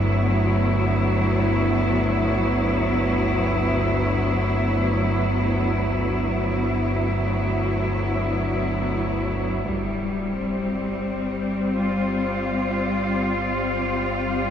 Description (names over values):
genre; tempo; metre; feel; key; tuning
dark ambient drone; free time; none; none; unclear; A4 = 440 Hz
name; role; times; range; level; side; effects
rich studio cello section; sustained chords; 0.0-14.5 s; D2 to F4; -22 LUFS; equal; shimmer reverb
deep rumbling drone; drone; 0.0-14.5 s; G1 to G2; -26 LUFS; equal; built-in reverb, lush chorus
impact; percussion; 9.7-9.9 s; none; -40 LUFS; right 1 dB; low-pass filter on sfx
room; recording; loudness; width
wet huge ambient reverb, RT60 7.6 s; none; -20 LUFS; side -9 dB against mid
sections
0.0-9.7 A section; 9.7-14.5 B section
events
filter sweep on synth drone 9.7-14.5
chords
0.0 D; 9.7 G7sus4